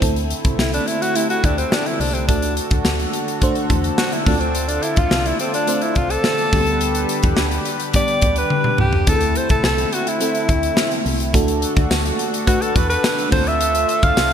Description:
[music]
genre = 1980s-style pop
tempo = 106 BPM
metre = 4/4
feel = straight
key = unclear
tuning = A4 = 440 Hz
[part]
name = FM electric piano with soft pad layer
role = accompaniment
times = 0.0-14.3 s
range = G3 to C5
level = -24 LUFS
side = right 1 dB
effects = chorus
[part]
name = chorused pulse-width pad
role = sustained chords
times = 0.0-14.3 s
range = D3 to B4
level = -26 LUFS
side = left 1 dB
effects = none
[part]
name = solid FM bass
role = bass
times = 0.0-14.3 s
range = C2 to E2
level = -23 LUFS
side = equal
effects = none
[part]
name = modern studio drum kit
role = drums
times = 0.0-14.3 s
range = hi-hat, kick drum, snare drum, tambourine, toms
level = -20 LUFS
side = equal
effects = gated reverb
[part]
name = bright alto saxophone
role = melody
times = 0.6-14.3 s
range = C4 to F5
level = -21 LUFS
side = equal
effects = ping-pong delay
[sound]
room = moderate lush hall reverb, RT60 2.7 s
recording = bright 1980s-style digital production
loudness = -16 LUFS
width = side -8 dB against mid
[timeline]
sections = 0.0-14.3 A section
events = alto saxophone solo 0.0-14.3; drum fill 8.5-9.1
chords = 0.0 Am; 2.3 D; 4.3 F; 6.5 G/D; 9.1 Am; 11.3 D; 13.3 F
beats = | 0.02 0.59 1.15 1.72 | 2.29 2.85 3.42 3.98 | 4.55 5.12 5.68 6.25 | 6.81 7.38 7.95 8.51 | 9.08 9.64 10.21 10.78 | 11.34 11.91 12.47 13.04 | 13.61 14.17

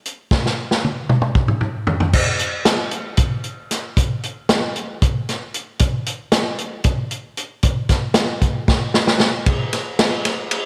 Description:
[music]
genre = rock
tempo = 229 BPM (eighths)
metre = 7/8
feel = straight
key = none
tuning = none
[part]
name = vintage drum kit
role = drums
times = 0.1-10.6 s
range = crash cymbal, hi-hat, kick drum, ride cymbal, snare drum, toms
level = -19 LUFS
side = equal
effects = none
[sound]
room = moderate echo chamber reverb, RT60 1.6 s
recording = none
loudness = -20 LUFS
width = mono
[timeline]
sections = 0.0-2.1 A section; 2.1-9.5 B section; 9.5-10.7 C section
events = drum fill 0.3-2.1, 8.7-9.5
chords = none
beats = 0.04 | 0.31 0.57 0.83 1.09 1.36 1.62 1.88 | 2.14 2.40 2.67 2.93 3.19 3.45 3.72 | 3.98 4.24 4.50 4.76 5.03 5.29 5.55 | 5.81 6.07 6.33 6.60 6.86 7.12 7.38 | 7.64 7.90 8.16 8.43 8.69 8.95 9.21 | 9.47 9.73 9.99 10.25 10.51

